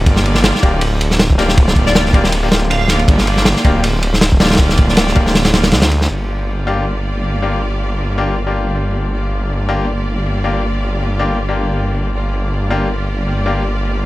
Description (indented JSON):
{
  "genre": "drum and bass, jungle",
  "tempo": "159 BPM",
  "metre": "4/4",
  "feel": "swing 54% on 16ths",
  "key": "G minor",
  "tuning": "A4 = 439 Hz",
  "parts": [
    { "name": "bright concert grand piano", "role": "stabs", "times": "0.0-13.6 s", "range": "Bb3 to G4", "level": "-22 LUFS", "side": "left 4 dB", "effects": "vintage 12-bit sampler grit, dub echo" },
    { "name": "detuned saw bass", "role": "bass", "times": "0.0-14.1 s", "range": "D1 to D2", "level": "-17 LUFS", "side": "equal", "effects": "none" },
    { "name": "bright studio string section", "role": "sustained chords", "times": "0.1-14.1 s", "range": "Bb3 to D5", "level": "-22 LUFS", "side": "right 1 dB", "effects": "vintage 12-bit sampler grit" },
    { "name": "crunchy breakbeat drum kit", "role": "drums", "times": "0.1-6.1 s", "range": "kick drum, ride cymbal, snare drum", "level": "-13 LUFS", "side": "equal", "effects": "none" },
    { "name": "glassy wavetable pluck", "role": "melody", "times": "1.9-2.9 s", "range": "D5 to F5", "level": "-22 LUFS", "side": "equal", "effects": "chorus, cassette tape, dub echo" }
  ],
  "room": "small room ambience",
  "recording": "none",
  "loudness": "-12 LUFS",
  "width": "side -18 dB against mid",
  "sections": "0.0-6.1 A section; 6.1-14.1 B section",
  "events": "drop 0.0-6.1",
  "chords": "0.0 Gm7"
}